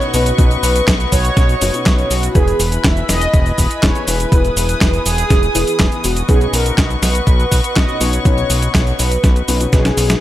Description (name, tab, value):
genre	italo disco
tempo	122 BPM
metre	4/4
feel	straight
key	B major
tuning	A4 = 440 Hz
part	mellow synth brass	melody	0.0-10.2 s	F#4 to E5	-20 LUFS	right 1 dB	chorus, tape echo
part	dark studio string section	sustained chords	0.0-10.2 s	E4 to D#6	-24 LUFS	left 2 dB	none
part	dark baby grand piano	stabs	0.0-10.2 s	B2 to B4	-24 LUFS	left 5 dB	none
part	clean 12-bit digital drum machine	drums	0.0-10.2 s	cabasa, handclaps, hi-hat, snare drum	-19 LUFS	equal	overdrive
part	fat analog bass	bass	0.1-10.2 s	E1 to B1	-18 LUFS	equal	none
part	electronic kick drum	drums	0.4-9.8 s	none	-14 LUFS	equal	overdrive
room	digital ambience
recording	none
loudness	-12 LUFS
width	side -14 dB against mid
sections	0.0-10.2 A section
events	drum fill 9.7-10.2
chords	0.0 Badd9; 2.4 E; 6.3 Badd9